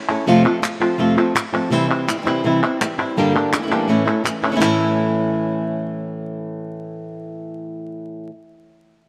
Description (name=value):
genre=flamenco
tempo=165 BPM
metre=4/4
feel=straight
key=A phrygian dominant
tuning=A4 = 440 Hz
part: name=flamenco guitar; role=melody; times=0.1-8.3 s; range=F2 to G4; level=-21 LUFS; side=equal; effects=none
part: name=palmas hand claps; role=percussion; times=0.1-4.7 s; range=none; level=-26 LUFS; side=equal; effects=none
part: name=flamenco guitar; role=stabs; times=1.7-8.3 s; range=G2 to G4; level=-29 LUFS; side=equal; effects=none
room=moderate plate reverb, RT60 3.2 s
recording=vinyl crackle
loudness=-19 LUFS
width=mono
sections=0.0-4.6 A section; 4.6-7.5 B section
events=none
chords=0.3 F; 1.7 C; 3.2 Gm; 3.9 A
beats=| 0.27 0.63 0.99 1.36 | 1.72 2.08 2.45 2.81 | 3.17 3.53 3.90 4.26 | 4.62 4.99 5.35 5.71 | 6.08 6.44 6.80 7.17